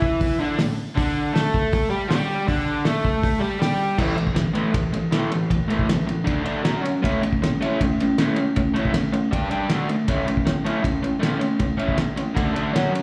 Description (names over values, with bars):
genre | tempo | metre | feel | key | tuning
garage rock duo or trio | 158 BPM | 4/4 | straight | A mixolydian | A4 = 440 Hz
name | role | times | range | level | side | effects
crunchy overdriven guitar | riff | 0.0-13.0 s | A2 to A4 | -24 LUFS | equal | slapback echo
cloth-damped thuddy drum kit | drums | 0.0-13.0 s | crash cymbal, hi-hat, kick drum, ride cymbal, snare drum | -26 LUFS | equal | none
room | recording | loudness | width
moderate lush hall reverb, RT60 1.6 s, small room ambience | live gig heard through the venue's PA, club reverb | -22 LUFS | mono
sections
0.0-4.0 A section; 4.0-13.0 B section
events
none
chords
0.0 A5; 1.0 D5; 4.0 A5; 6.3 D5; 6.6 F#5; 7.0 A; 9.3 G5; 9.7 D5; 10.1 A; 12.4 D5